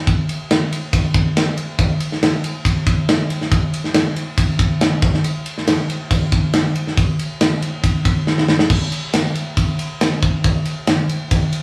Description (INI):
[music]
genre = rock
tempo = 139 BPM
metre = 4/4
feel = straight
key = none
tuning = none
[part]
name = tight metal drum kit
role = drums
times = 0.1-11.6 s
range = crash cymbal, kick drum, ride cymbal, snare drum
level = -18 LUFS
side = equal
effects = none
[sound]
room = moderate studio reverb, RT60 0.6 s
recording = band playing live in one room, studio ambience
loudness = -18 LUFS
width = mono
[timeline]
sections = 0.0-8.7 A section; 8.7-11.6 B section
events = drum fill 8.3-8.7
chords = none